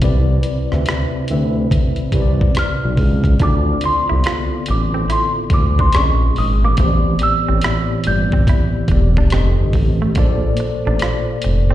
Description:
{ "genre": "R&B, neo-soul", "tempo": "71 BPM", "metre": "4/4", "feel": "swing 63% on 16ths", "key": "C major", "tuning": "A4 = 440 Hz", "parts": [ { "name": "mellow tine electric piano", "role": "accompaniment", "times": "0.0-11.7 s", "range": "A2 to E5", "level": "-21 LUFS", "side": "left 1 dB", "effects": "medium stereo tremolo, slapback echo" }, { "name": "smooth synth bass", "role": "bass", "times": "0.0-11.7 s", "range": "E1 to D2", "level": "-16 LUFS", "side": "equal", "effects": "none" }, { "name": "boom bap sampler-style drum kit", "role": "drums", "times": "0.0-11.7 s", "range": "hi-hat, kick drum, rim click", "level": "-18 LUFS", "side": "equal", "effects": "none" }, { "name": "worn celesta", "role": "melody", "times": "2.6-9.7 s", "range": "C6 to G6", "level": "-21 LUFS", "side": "equal", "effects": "plate reverb, slapback echo, tape echo" }, { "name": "semi-hollow electric guitar", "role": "second line", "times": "3.4-11.7 s", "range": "A3 to F4", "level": "-29 LUFS", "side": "right 7 dB", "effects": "plate reverb, slapback echo" } ], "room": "little or no reverb", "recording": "live gig heard through the venue's PA, recital hall reverb", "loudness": "-14 LUFS", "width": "side -13 dB against mid", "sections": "0.0-11.7 A section", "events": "none", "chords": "0.0 Cmaj9; 3.4 Dm9; 5.9 Bbm11; 6.8 Am11; 9.3 F7; 10.2 Bbmaj9", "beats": "| 0.02 0.86 1.71 2.55 | 3.40 4.24 5.09 5.93 | 6.78 7.62 8.47 9.31 | 10.16 11.00" }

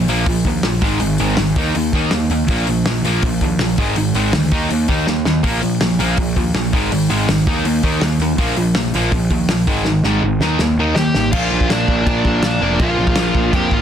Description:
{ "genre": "punk rock", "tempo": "163 BPM", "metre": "4/4", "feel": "straight", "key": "Bb mixolydian", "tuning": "A4 = 439 Hz", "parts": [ { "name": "distorted electric guitar", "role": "riff", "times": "0.0-13.8 s", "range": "Ab2 to Eb4", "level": "-18 LUFS", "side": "right 1 dB", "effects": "distortion" }, { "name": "fuzz picked electric bass", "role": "bass", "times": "0.0-13.8 s", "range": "F1 to F2", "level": "-20 LUFS", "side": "equal", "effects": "overdrive" }, { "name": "loose indie drum kit", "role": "drums", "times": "0.1-13.8 s", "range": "crash cymbal, hi-hat, kick drum, snare drum", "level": "-20 LUFS", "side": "left 1 dB", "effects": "none" }, { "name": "dark smooth lead guitar", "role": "melody", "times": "11.0-13.8 s", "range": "D4 to G5", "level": "-21 LUFS", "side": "equal", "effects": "overdrive, tape echo" } ], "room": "little or no reverb", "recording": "dense, heavily limited modern master", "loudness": "-14 LUFS", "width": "side -9 dB against mid", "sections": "0.0-11.3 A section; 11.3-13.8 B section", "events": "drum fill 5.1-5.4, 9.9-11.3", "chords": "0.0 Bb5; 0.8 Ab5; 1.6 Eb5; 2.5 Bb5; 3.8 Ab5; 4.5 Eb5; 5.4 Bb5; 6.7 Ab5; 7.5 Eb5; 8.4 Bb5; 9.7 Ab5; 10.4 Eb; 11.3 Bb", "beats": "0.26 0.63 | 1.00 1.38 1.75 2.12 | 2.49 2.86 3.23 3.60 | 3.96 4.33 4.70 5.07 | 5.44 5.81 6.18 6.55 | 6.91 7.28 7.65 8.02 | 8.39 8.76 9.12 9.49 | 9.86 10.23 10.60 10.96 | 11.33 11.70 12.06 12.43 | 12.80 13.17 13.53" }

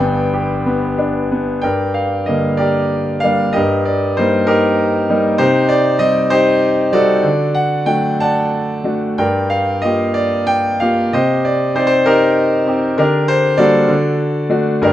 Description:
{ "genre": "classical, lyrical solo piano", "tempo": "60-66 BPM (dotted quarters)", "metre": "6/8", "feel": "rubato", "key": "G minor", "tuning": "A4 = 440 Hz", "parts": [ { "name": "bright concert grand piano", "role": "solo", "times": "0.0-14.9 s", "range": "G1 to A5", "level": "-13 LUFS", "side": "equal", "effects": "none" } ], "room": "light reverb", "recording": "close, detailed microphones", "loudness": "-13 LUFS", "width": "side -12 dB against mid", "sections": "0.0-1.6 A section; 1.6-14.9 B section", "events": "none", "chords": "0.0 G; 1.6 Gm; 3.6 Eb/G; 5.4 Cm; 7.2 D; 9.2 Gm7; 11.1 Cm; 13.0 Gm/D; 13.9 D", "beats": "0.66 | 1.64 2.60 | 3.56 4.49 | 5.40 6.31 | 7.25 8.20 | 9.19 10.17 | 11.13 12.06 | 12.98 13.89 | 14.83" }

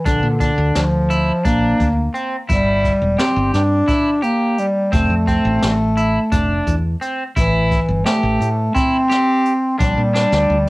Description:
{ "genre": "progressive instrumental, band music in an uneven meter", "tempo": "172 BPM (eighths)", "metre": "7/8", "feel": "straight", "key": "unclear", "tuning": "A4 = 440 Hz", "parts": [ { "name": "mellow bass clarinet", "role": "melody", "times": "0.0-10.7 s", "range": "D3 to D4", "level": "-17 LUFS", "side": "equal", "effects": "cassette tape, analog delay" }, { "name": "electric guitar at the edge of break-up", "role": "arpeggios", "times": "0.1-10.6 s", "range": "C4 to G4", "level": "-22 LUFS", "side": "equal", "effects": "none" }, { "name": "woody fretless electric bass", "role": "bass", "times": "0.1-10.7 s", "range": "E1 to Bb2", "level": "-19 LUFS", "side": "equal", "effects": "lush chorus" }, { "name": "jazz brush drum kit", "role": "drums", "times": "0.1-10.5 s", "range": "hi-hat, kick drum, snare drum", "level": "-22 LUFS", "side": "equal", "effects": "cassette tape" } ], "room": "moderate studio reverb, RT60 0.6 s", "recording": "home recording on cassette", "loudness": "-14 LUFS", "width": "side -22 dB against mid", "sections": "0.0-10.7 A section", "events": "drum fill 10.2-10.7", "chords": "0.1 Bb; 2.5 G5; 4.9 F6; 7.4 Am7; 9.8 Bb6", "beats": "| 0.06 0.41 0.75 1.10 1.45 1.80 2.15 | 2.49 2.84 3.19 3.54 3.89 4.24 4.58 | 4.93 5.28 5.63 5.97 6.32 6.67 7.02 | 7.37 7.71 8.06 8.41 8.76 9.11 9.46 | 9.80 10.15 10.50" }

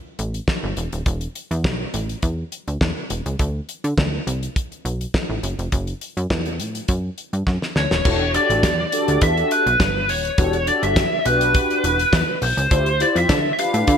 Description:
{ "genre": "early-eighties boogie funk", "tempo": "103 BPM", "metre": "4/4", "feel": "straight", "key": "unclear", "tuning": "A4 = 440 Hz", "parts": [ { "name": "plucky analog bass", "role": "bass", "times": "0.2-14.0 s", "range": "D#1 to D3", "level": "-23 LUFS", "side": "equal", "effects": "none" }, { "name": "damped 70s drum kit", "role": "drums", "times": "0.2-14.0 s", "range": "crash cymbal, hi-hat, kick drum, snare drum", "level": "-22 LUFS", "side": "equal", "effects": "gated reverb" }, { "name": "nasal lead guitar with a parked wah", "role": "melody", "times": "7.8-14.0 s", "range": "B4 to F5", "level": "-19 LUFS", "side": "equal", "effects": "overdrive" }, { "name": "mellow synth brass", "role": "accompaniment", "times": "8.1-14.0 s", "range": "D4 to C5", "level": "-24 LUFS", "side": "left 1 dB", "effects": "chorus" } ], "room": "light reverb, small room ambience", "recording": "bright 1980s-style digital production", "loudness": "-18 LUFS", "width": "side -7 dB against mid", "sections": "0.0-8.1 A section; 8.1-14.0 B section", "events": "drum fill 7.5-8.1", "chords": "0.0 E5; 3.4 D5; 5.4 F#m7; 8.1 Em11; 12.7 Dm11", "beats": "0.48 | 1.06 1.65 2.23 2.81 | 3.39 3.98 4.56 5.14 | 5.72 6.30 6.89 7.47 | 8.05 8.63 9.22 9.80 | 10.38 10.96 11.55 12.13 | 12.71 13.30 13.88" }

